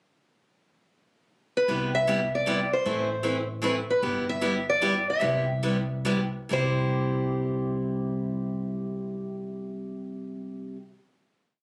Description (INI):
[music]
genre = acoustic string swing (jazz manouche)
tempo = 131-154 BPM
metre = 3/4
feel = swing 62% on 8ths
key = C major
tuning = A4 = 438 Hz
[part]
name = picked acoustic archtop guitar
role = melody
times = 1.6-10.7 s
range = B4 to E5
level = -30 LUFS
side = equal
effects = none
[part]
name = picked steel-string acoustic guitar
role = accompaniment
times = 1.7-10.8 s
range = C3 to B4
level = -31 LUFS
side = equal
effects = none
[part]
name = upright bass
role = bass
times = 1.7-10.7 s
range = G1 to C2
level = -35 LUFS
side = equal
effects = none
[sound]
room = moderate club reverb, RT60 0.7 s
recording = recorded on a phone in the room, club reverb, compression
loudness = -27 LUFS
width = mono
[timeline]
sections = 0.5-1.7 pickup bar; 1.7-6.5 A section; 6.5-9.3 final chord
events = slowing down 4.0-6.5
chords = 0.5 N.C.; 1.7 Cmaj7; 2.9 Amadd9; 4.0 G6; 5.2 Cmaj7; 6.5 C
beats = | 0.51 0.90 1.29 | 1.68 2.08 2.47 | 2.86 3.25 3.65 | 4.04 4.43 4.83 | 5.23 5.65 6.08 | 6.52 6.98 7.44 | 7.90 8.35 8.81